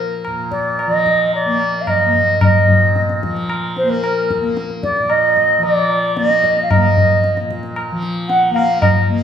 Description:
indian classical, Hindustani; 112 BPM; 4/4; straight; Bb major; A4 = 437 Hz
reedy bansuri; melody; 0.0-9.1 s; Bb4 to Gb5; -15 LUFS; right 1 dB
tanpura; drone; 0.0-9.2 s; Bb2 to Bb3; -23 LUFS; left 1 dB
tabla; percussion; 0.2-9.0 s; -19 LUFS; left 2 dB
wet large studio reverb, RT60 1.3 s; band playing live in one room; -13 LUFS; side -8 dB against mid
0.0-9.2 A section

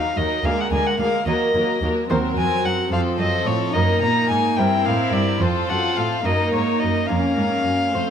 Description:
classical, baroque-style concerto movement with solo episodes; 72 BPM (dotted quarters); 6/8; straight; Bb minor; A4 = 440 Hz
dark violin; melody; 0.0-8.1 s; C5 to Bb5; -23 LUFS; left 2 dB
rich chamber violin section; melody; 0.0-8.1 s; A4 to C5; -29 LUFS; left 5 dB
warm chamber violin section; second line; 0.0-8.1 s; Bb3 to F4; -26 LUFS; left 4 dB
lute; accompaniment; 0.0-8.1 s; D2 to C5; -27 LUFS; right 1 dB
rich chamber viola section; accompaniment; 0.0-8.1 s; F3 to C4; -27 LUFS; right 4 dB
rich chamber cello section; bass; 0.2-8.1 s; D2 to Bb2; -24 LUFS; right 3 dB
moderate recital hall reverb, RT60 1.7 s; close, detailed microphones; -18 LUFS; side -8 dB against mid
0.0-8.1 A section
0.4 Bb7/D; 1.3 Ebm; 2.1 Cm7b5/Eb; 2.9 F; 3.8 Ebm/Gb; 4.6 C7/G; 5.4 F; 6.2 Ebm/Gb; 7.1 Bbm/F

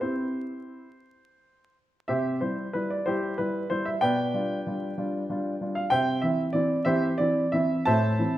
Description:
classical-period piano sonatina; 57-65 BPM (dotted quarters); 6/8; rubato; C major; A4 = 439 Hz
dark baby grand piano; solo; 0.0-8.4 s; A2 to A5; -24 LUFS; equal
wet recital hall reverb, RT60 1.5 s; dark, warm production, vinyl crackle; -24 LUFS; side -14 dB against mid
0.0-2.1 A section; 2.1-8.4 B section
0.0 C; 4.0 G7/B; 5.9 C; 7.9 Am

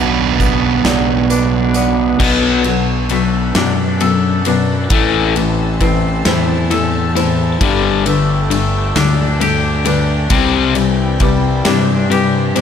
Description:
post-rock; 44 BPM (dotted quarters); 6/8; straight; B phrygian; A4 = 439 Hz
soft additive organ-like pad; sustained chords; 0.0-12.6 s; C4 to B5; -25 LUFS; equal; ensemble chorus, built-in reverb
twangy electric guitar; arpeggios; 0.0-12.6 s; A2 to A4; -21 LUFS; left 2 dB; lush chorus, tape echo
sludgy distorted guitar; riff; 0.0-2.2 s; B2 to D4; -15 LUFS; right 10 dB; overdrive
fuzz fingered electric bass; bass; 0.0-12.6 s; G1 to G2; -18 LUFS; equal; overdrive
felt-muted upright piano; arpeggios; 0.4-12.6 s; A4 to D5; -26 LUFS; right 7 dB; tape echo
big rock drum kit; drums; 0.4-12.6 s; crash cymbal, hi-hat, kick drum, ride cymbal, snare drum; -20 LUFS; equal
distorted electric guitar; riff; 2.2-12.6 s; G2 to C4; -16 LUFS; left 8 dB; distortion
light reverb, studio ambience; dark, warm production; -12 LUFS; side -8 dB against mid
0.0-2.2 A section; 2.2-12.6 B section
build-up 2.2-12.6
0.0 Bm7; 4.9 Am; 7.6 Gsus2; 10.3 Cadd9

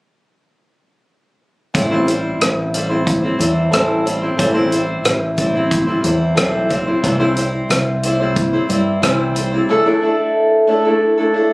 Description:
folk rock and heartland rock; 91 BPM; 4/4; straight; A minor; A4 = 439 Hz
picked old ladder-braced acoustic guitar; accompaniment; 1.7-11.5 s; A2 to C5; -15 LUFS; equal
natural country drum kit; drums; 1.7-9.5 s; hi-hat, kick drum, rim click; -19 LUFS; equal
picked electric bass; bass; 1.8-9.6 s; A1 to G2; -21 LUFS; equal
light reverb; recorded on a phone in the room, club reverb; -14 LUFS; side -24 dB against mid
1.7-11.5 A section
1.7 Am7; 7.0 C; 9.7 Dsus2

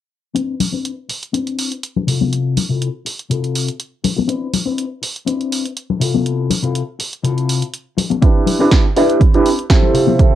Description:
filtered disco house; 122 BPM; 4/4; swing 53% on 16ths; C major; A4 = 444 Hz
twelve-string electric guitar; riff; 0.3-10.3 s; C3 to B4; -20 LUFS; left 4 dB; sidechain pumping, low-pass filter
punchy analog drum machine; drums; 0.4-10.3 s; hi-hat, snare drum; -23 LUFS; right 2 dB; sidechain pumping on hats, cassette tape
maracas and congas; percussion; 0.4-10.3 s; -19 LUFS; left 6 dB; sidechain pumping on perc, low-pass filter on perc
bright concert grand piano; accompaniment; 8.2-10.3 s; C4 to E5; -14 LUFS; right 2 dB; phaser, sidechain pumping, low-pass filter
electronic kick drum; drums; 8.2-10.3 s; -12 LUFS; right 2 dB; overdrive, cassette tape
moderate studio reverb, RT60 0.5 s; home recording on cassette; -15 LUFS; side -12 dB against mid
0.4-10.3 A section
filter sweep 0.4-10.3
0.4 Cmaj9; 2.1 Fmaj7/C; 4.3 Cmaj9; 6.0 Fmaj7/C; 8.2 Cmaj9

